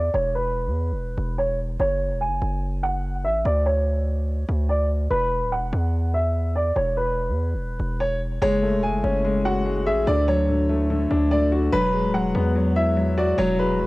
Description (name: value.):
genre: hip hop, drill.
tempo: 145 BPM.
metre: 4/4.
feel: half-time.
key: unclear.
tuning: A4 = 441 Hz.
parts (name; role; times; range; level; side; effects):
clear upright piano; melody; 0.0-13.9 s; B4 to G#5; -25 LUFS; right 1 dB; low-pass filter.
distorted 808-style bass; bass; 0.0-13.9 s; D1 to E2; -24 LUFS; equal; distortion.
dark grand piano; accompaniment; 8.4-13.9 s; D3 to G#4; -22 LUFS; left 2 dB; low-pass filter, cassette tape.
room: small room ambience.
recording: home recording on cassette.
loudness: -20 LUFS.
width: side -20 dB against mid.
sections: 0.0-13.9 A section.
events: filter sweep 0.0-8.4.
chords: 0.0 E5; 1.8 F#sus2; 3.5 N.C.; 5.1 E5; 8.4 F#madd9; 10.1 D; 11.7 Eadd9.